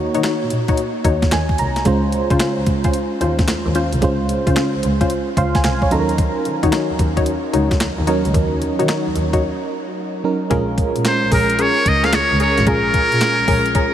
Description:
R&B, new jack swing; 111 BPM; 4/4; swing 66% on 16ths; Eb dorian; A4 = 440 Hz
FM electric piano with tremolo; accompaniment; 0.0-13.9 s; Gb3 to C6; -21 LUFS; right 3 dB
bright double bass; bass; 0.0-13.6 s; Ab1 to Eb3; -22 LUFS; equal
funky polysynth comp; stabs; 0.1-13.9 s; Db4 to Db5; -23 LUFS; left 4 dB; chorus, analog delay
crisp 8-bit digital drum machine; drums; 0.1-13.9 s; handclaps, hi-hat, kick drum, snare drum; -21 LUFS; equal
trumpet with metal mute; melody; 11.1-13.9 s; Bb4 to F5; -16 LUFS; equal
moderate huge ambient reverb, RT60 8.8 s; dreamy mix soaked in reverb; -15 LUFS; side -10 dB against mid
0.0-10.5 A section; 10.5-13.9 B section
FM electric piano fill 1.0-1.9, 5.1-6.2; break 9.4-10.5
0.0 Ebm7; 1.9 Dbmaj7; 5.9 Ebm7; 10.5 Bbm7
0.24 0.78 1.32 | 1.86 2.40 2.94 3.48 | 4.02 4.56 5.10 5.64 | 6.18 6.72 7.26 7.81 | 8.35 8.89 9.43 9.97 | 10.51 11.05 11.59 12.13 | 12.67 13.21 13.75

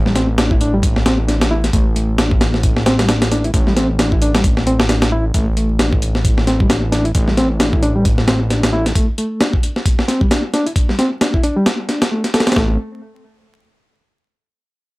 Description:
breakbeat, breaks; 133 BPM; 4/4; swing 58% on 16ths; A minor; A4 = 440 Hz
fat analog bass; bass; 0.0-8.9, 12.6-12.8 s; A1; -18 LUFS; equal; tube saturation
bright reed electric piano; riff; 0.1-12.8 s; G3 to A4; -19 LUFS; equal; fast tremolo, low-pass filter, analog delay
breakbeat sampler-style drum kit; drums; 0.1-12.7 s; hi-hat, kick drum, snare drum; -16 LUFS; equal
light reverb; dry, gritty hardware recording, vinyl crackle; -13 LUFS; side -21 dB against mid
0.0-5.3 A section; 5.3-12.6 B section; 12.6-14.4 C section
0.38 0.83 1.28 | 1.74 2.19 2.64 3.09 | 3.54 3.99 4.44 4.89 | 5.34 5.79 6.25 6.70 | 7.15 7.60 8.05 8.50 | 8.95 9.40 9.86 10.31 | 10.76 11.21 11.66 12.11 | 12.56

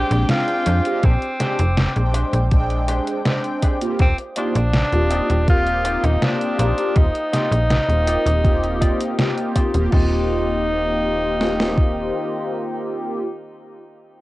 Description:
vaporwave; 81 BPM; 4/4; straight; Eb major; A4 = 440 Hz
clear tenor saxophone; melody; 0.0-13.2 s; C4 to G4; -23 LUFS; equal; cassette tape, tape echo
mellow synth brass; accompaniment; 0.0-13.2 s; Ab3 to G5; -24 LUFS; equal; phaser, lush chorus, cassette tape, tape echo
warbly tape-like pad; sustained chords; 0.4-13.2 s; Eb3 to Eb6; -34 LUFS; left 1 dB; chorus, built-in reverb, cassette tape
electric guitar with an envelope filter; riff; 0.0-13.3 s; D4 to Eb5; -32 LUFS; left 1 dB; wide subtle chorus, cassette tape, tape echo
slap-like FM bass; bass; 0.0-12.1 s; Eb1 to F2; -20 LUFS; equal
detuned 8-bit digital drum machine; drums; 0.1-10.1 s; crash cymbal, hi-hat, snare drum; -23 LUFS; equal; cassette tape
gated 80s digital drum machine; drums; 1.0-12.0 s; kick drum, snare drum; -17 LUFS; equal; gated reverb, gated reverb snare, overdrive, cassette tape
little or no reverb; home recording on cassette; -17 LUFS; side -18 dB against mid
0.0-9.9 A section; 9.9-12.9 B section
0.0 Bb13; 4.0 Eb69
0.29 | 1.03 1.78 2.52 3.26 | 4.00 4.74 5.48 6.22 | 6.96 7.70 8.44 9.18 | 9.92 10.66 11.41 12.15

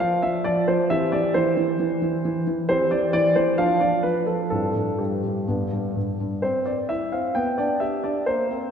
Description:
classical-period piano sonatina; 132 BPM; 4/4; rubato; C major; A4 = 440 Hz
warm grand piano; solo; 0.0-8.7 s; G2 to G5; -20 LUFS; equal
wet church reverb, RT60 3.1 s; dark, warm production; -20 LUFS; side -7 dB against mid
0.0-6.4 A section; 6.4-8.7 B section
0.0 F5; 0.9 C/E; 3.6 Dm/F; 4.5 C/G; 5.5 G; 6.4 C; 7.4 G/B
0.00 0.45 | 0.90 1.34 1.79 2.24 | 2.68 3.13 3.57 4.04 | 4.51 4.99 5.48 5.96 | 6.43 6.90 7.36 7.81 | 8.27

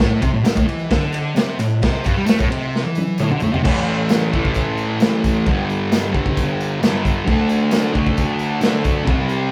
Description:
garage rock duo or trio; 132 BPM; 4/4; straight; A minor; A4 = 440 Hz
fuzz guitar; riff; 0.0-9.5 s; G2 to D4; -21 LUFS; equal; distortion
crunchy breakbeat drum kit; drums; 0.0-9.2 s; crash cymbal, kick drum, ride cymbal, snare drum, toms; -22 LUFS; equal
tambourine; percussion; 0.0-9.4 s; -43 LUFS; equal
wet studio reverb, RT60 0.8 s; band playing live in one room; -18 LUFS; mono
0.0-3.6 A section; 3.6-9.5 B section
drum fill 2.7-3.6
0.0 Am; 3.6 A5; 5.5 G5; 7.3 D5
| 0.00 0.46 0.91 1.37 | 1.83 2.28 2.74 3.19 | 3.65 4.10 4.55 5.01 | 5.46 5.91 6.36 6.82 | 7.27 7.72 8.17 8.62 | 9.07

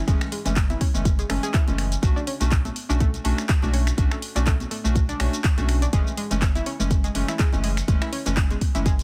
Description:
deep house; 123 BPM; 4/4; swing 56% on 16ths; B minor; A4 = 439 Hz
analog pluck; arpeggios; 0.0-8.9 s; G#3 to G#4; -35 LUFS; equal; chorus, sidechain pumping, digital delay
warm analog keys; stabs; 0.1-8.9 s; E3 to F#4; -32 LUFS; equal; chorus, sidechain pumping, dub echo
sub bass with octave; bass; 0.1-9.0 s; F#1 to B1; -27 LUFS; equal; sidechain pumping
deep house drum kit; drums; 0.1-9.0 s; finger snaps, handclaps, hi-hat, shaker; -33 LUFS; equal
electronic kick drum; drums; 0.1-9.0 s; -24 LUFS; equal
congas; percussion; 0.5-9.0 s; -39 LUFS; equal
digital ambience; dense, heavily limited modern master, vinyl crackle; -23 LUFS; mono
0.0-9.0 A section
0.0 F#m9; 2.0 Bm9; 5.9 F#m9
| 0.08 0.56 1.05 1.54 | 2.03 2.52 3.00 3.49 | 3.98 4.47 4.96 5.44 | 5.93 6.42 6.91 7.39 | 7.88 8.37 8.86

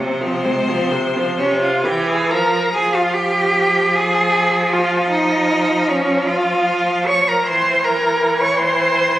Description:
classical, slow romantic movement for string quartet; 42-55 BPM (dotted quarters); 6/8; rubato; F minor; A4 = 444 Hz
rich violin; melody; 0.0-9.2 s; C5 to Bb5; -28 LUFS; left 4 dB
rich violin; second line; 0.0-9.2 s; C4 to Db6; -24 LUFS; left 1 dB
clear viola; accompaniment; 0.0-9.2 s; C3 to Ab3; -20 LUFS; equal
rich cello; bass; 0.0-9.2 s; C3 to Db5; -17 LUFS; right 1 dB
moderate recital hall reverb, RT60 1.4 s; recorded on a phone in the room, club reverb, compression; -14 LUFS; side -14 dB against mid
0.0-2.8 A section; 2.8-9.2 B section
0.0 Fm/C; 1.4 C; 2.8 Fm; 5.1 Bbmadd11/F; 7.5 C7/E
1.40 | 2.75 3.96 | 5.12 6.29 | 7.46 8.56

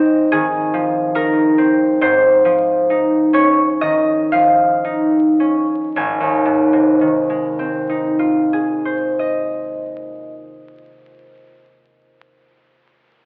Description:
classical, solo harp piece; 51-73 BPM; 4/4; rubato; Ab major; A4 = 441 Hz
concert harp; solo; 0.0-11.6 s; Ab1 to Ab5; -16 LUFS; equal
wet recital hall reverb, RT60 1.6 s; vinyl crackle, telephone sound; -16 LUFS; mono
0.0-6.0 A section; 6.0-10.1 B section
slowing down 0.0-6.0
0.0 Ab69; 2.0 Dbadd9/Ab; 6.0 Ab6
0.32 1.15 | 2.01 2.90 3.82 4.85 | 5.96 6.98 8.01 9.04

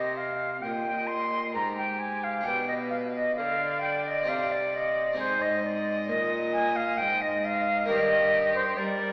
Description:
classical, baroque-style sonata movement with continuo; 66 BPM; 3/4; straight; C minor; A4 = 439 Hz
concert flute; second line; 0.0-9.1 s; C5 to C6; -26 LUFS; equal
harpsichord; accompaniment; 0.0-9.1 s; G2 to Bb4; -35 LUFS; equal
rich cello; bass; 0.0-9.1 s; G2 to G3; -35 LUFS; equal
rich violin; melody; 0.6-9.1 s; G4 to Eb5; -33 LUFS; equal
wet recital hall reverb, RT60 1.8 s; heard from further back in the room, AM radio sound; -24 LUFS; side -34 dB against mid
0.0-9.1 A section
0.0 Cm; 2.5 G/B; 4.3 Cm; 5.2 Ab; 7.9 Eb/G
0.63 1.54 | 2.45 3.37 4.27 | 5.17 6.08 6.98 | 7.88 8.78

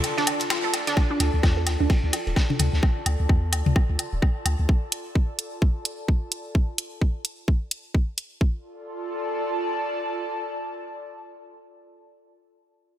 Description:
minimal techno; 129 BPM; 4/4; swing 59% on 16ths; D minor; A4 = 439 Hz
garage drum kit; drums; 0.0-8.3 s; finger snaps, hi-hat; -28 LUFS; right 1 dB
raw garage drum kit; drums; 0.0-2.8 s; ride cymbal, snare drum; -34 LUFS; equal; sidechain pumping on cymbals, high-pass filter on cymbals, sidechain pumping on hats, high-pass filter on hats, high-pass filter on snare, high-pass filter on room
electronic woodblock and toms; percussion; 0.0-4.6 s; -31 LUFS; left 4 dB; tape echo
airy breathy pad; texture; 0.0-12.0 s; F4 to A5; -32 LUFS; equal; chorus, sidechain pumping
resonant blip pluck; riff; 0.2-2.6 s; D4 to A4; -28 LUFS; right 3 dB; chorus, sidechain pumping, ping-pong delay
electronic kick drum; drums; 1.0-8.5 s; -20 LUFS; equal
punchy sub bass; bass; 1.2-4.7 s; D1 to E2; -24 LUFS; equal; sidechain pumping
light reverb, studio reverb; -22 LUFS; side -12 dB against mid
1.0-8.4 A section; 8.4-12.1 B section
break 0.0-1.0; filter sweep on synth pluck 1.0-2.8
0.0 Dm
0.04 0.50 | 0.97 1.43 1.90 2.36 | 2.83 3.29 3.76 4.22 | 4.69 5.15 5.62 6.08 | 6.55 7.01 7.48 7.94 | 8.41 8.87 9.34 9.80 | 10.27 10.73 11.20 11.66

